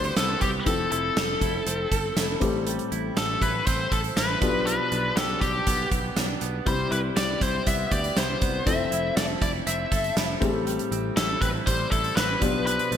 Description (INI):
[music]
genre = 1980s-style pop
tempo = 120 BPM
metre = 4/4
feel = straight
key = C major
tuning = A4 = 440 Hz
[part]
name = biting lead guitar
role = melody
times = 0.0-13.0 s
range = G4 to E5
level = -27 LUFS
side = left 2 dB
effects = overdrive, shimmer reverb, ping-pong delay
[part]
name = dark baby grand piano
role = accompaniment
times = 0.0-13.0 s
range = A2 to B5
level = -31 LUFS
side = left 5 dB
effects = shimmer reverb
[part]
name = direct-recorded clean electric guitar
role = riff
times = 0.0-13.0 s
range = F3 to A4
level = -33 LUFS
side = right 6 dB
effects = wide subtle chorus, shimmer reverb
[part]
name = sustaining fretless electric bass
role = bass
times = 0.0-13.0 s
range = F1 to D2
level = -31 LUFS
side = equal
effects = none
[part]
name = gated 80s drum kit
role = drums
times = 0.0-13.0 s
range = hi-hat, kick drum, snare drum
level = -27 LUFS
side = right 1 dB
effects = gated reverb
[sound]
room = moderate plate reverb, RT60 2.0 s, small room ambience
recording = bright 1980s-style digital production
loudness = -22 LUFS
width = side -9 dB against mid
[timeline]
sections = 0.0-13.0 A section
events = none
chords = 0.0 Cmaj7; 0.7 Fmaj7; 2.4 Am7; 4.4 G7/B; 6.7 Cmaj7; 8.7 Fmaj7; 10.4 Am7; 12.4 G7/B